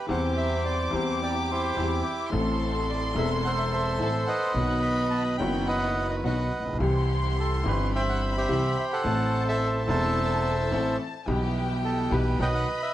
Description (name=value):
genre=tango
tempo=107 BPM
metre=4/4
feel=rubato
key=unclear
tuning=A4 = 441 Hz
part: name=bandoneon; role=melody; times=0.0-12.9 s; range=E4 to B5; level=-28 LUFS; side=right 1 dB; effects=plate reverb
part: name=warm chamber violin section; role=second line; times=0.0-12.9 s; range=G5 to D6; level=-35 LUFS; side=left 2 dB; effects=none
part: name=clear upright piano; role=accompaniment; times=0.1-12.6 s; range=E1 to A4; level=-30 LUFS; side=left 2 dB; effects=none
part: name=dark studio string section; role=stabs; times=0.1-12.6 s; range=B3 to A4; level=-35 LUFS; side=equal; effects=none
part: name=upright bass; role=bass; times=0.1-12.6 s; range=E1 to E2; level=-29 LUFS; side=right 1 dB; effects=none
room=moderate studio reverb, RT60 0.8 s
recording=worn, warbling old tape, cassette tape, warbly pitch drift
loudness=-24 LUFS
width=side -13 dB against mid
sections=0.0-12.9 A section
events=none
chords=0.1 C/E; 2.3 Am; 4.6 B; 6.8 C; 9.1 Am; 11.3 Em/B; 12.4 B